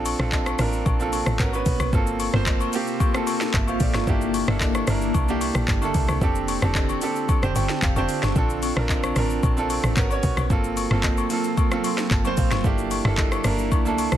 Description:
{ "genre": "amapiano", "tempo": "112 BPM", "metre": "4/4", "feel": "straight", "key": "G dorian", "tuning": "A4 = 440 Hz", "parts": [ { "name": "clear grand piano", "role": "accompaniment", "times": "0.0-14.2 s", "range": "Bb3 to C6", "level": "-25 LUFS", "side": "right 3 dB", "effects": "none" }, { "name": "ethereal airy pad", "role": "sustained chords", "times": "0.6-14.2 s", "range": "C3 to A4", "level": "-31 LUFS", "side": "left 1 dB", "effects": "ensemble chorus, built-in reverb, phaser, sidechain pumping" }, { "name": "tight log drum bass", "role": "bass", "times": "0.0-14.2 s", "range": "F1 to C2", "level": "-25 LUFS", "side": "equal", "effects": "none" }, { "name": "afro-pop drum kit", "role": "drums", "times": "0.1-14.2 s", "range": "handclaps, hi-hat, kick drum, rim click, shaker, snare drum", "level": "-24 LUFS", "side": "equal", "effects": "none" }, { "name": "agogo bells and woodblock", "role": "percussion", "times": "0.1-14.1 s", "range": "none", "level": "-33 LUFS", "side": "left 9 dB", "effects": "none" } ], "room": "digital ambience", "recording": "dense, heavily limited modern master, faint mains hum", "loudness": "-20 LUFS", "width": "side -11 dB against mid", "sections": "0.0-14.2 A section", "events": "grand piano fill 7.3-8.4, 11.6-12.6", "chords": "0.0 Bbmaj9; 1.4 Abm11; 1.9 Gm11; 6.2 F6; 8.4 Bbmaj9; 10.0 Abm11; 10.5 Gm11; 12.6 C9/G" }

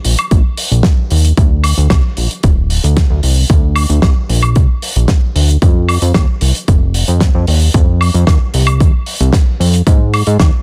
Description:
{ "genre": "nu-disco, nu disco", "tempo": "113 BPM", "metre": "4/4", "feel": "straight", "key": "unclear", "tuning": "A4 = 444 Hz", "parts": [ { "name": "fat analog bass", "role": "bass", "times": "0.0-10.5 s", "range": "D1 to Ab2", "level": "-14 LUFS", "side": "equal", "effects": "none" }, { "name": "damped 70s drum kit", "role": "drums", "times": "0.0-10.5 s", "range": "hi-hat, snare drum, woodblock", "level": "-20 LUFS", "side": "equal", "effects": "studio ambience" }, { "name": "electronic kick drum", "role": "drums", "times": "0.3-10.5 s", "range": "none", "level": "-13 LUFS", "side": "equal", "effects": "overdrive, studio ambience" } ], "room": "little or no reverb", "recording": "dense, heavily limited modern master", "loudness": "-12 LUFS", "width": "mono", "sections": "0.0-10.6 A section", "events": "none", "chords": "none" }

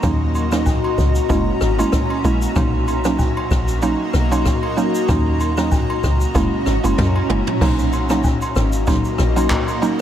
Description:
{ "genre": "afrobeats", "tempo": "95 BPM", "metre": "4/4", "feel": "swing 55% on 16ths", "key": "B major", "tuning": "A4 = 439 Hz", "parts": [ { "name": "mallet-like synth pluck", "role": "accompaniment", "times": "0.0-10.0 s", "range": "F#3 to E4", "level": "-22 LUFS", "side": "right 3 dB", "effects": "chorus" }, { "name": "granular cloud pad", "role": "sustained chords", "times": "0.0-10.0 s", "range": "A#3 to A#5", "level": "-23 LUFS", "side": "left 1 dB", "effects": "built-in reverb, wide subtle chorus, sidechain pumping" }, { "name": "woody log drum bass", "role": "bass", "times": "0.0-9.5 s", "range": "F#1 to F#2", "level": "-20 LUFS", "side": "equal", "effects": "none" }, { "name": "jazz brush drum kit", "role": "drums", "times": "0.0-10.0 s", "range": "crash cymbal, handclaps, kick drum, rim click, shaker, toms", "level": "-22 LUFS", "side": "left 1 dB", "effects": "none" }, { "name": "agogo bells and woodblock", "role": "percussion", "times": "0.0-9.8 s", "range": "none", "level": "-30 LUFS", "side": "right 1 dB", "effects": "none" } ], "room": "moderate huge ambient reverb, RT60 8.4 s", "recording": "dreamy mix soaked in reverb", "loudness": "-16 LUFS", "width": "side -10 dB against mid", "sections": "0.0-7.6 A section; 7.6-10.0 B section", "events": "drum fill 7.0-7.6", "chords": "0.0 D#m7; 1.3 F#7; 2.6 Bmaj7; 5.1 D#m7; 6.3 F#7; 7.6 Bmaj7" }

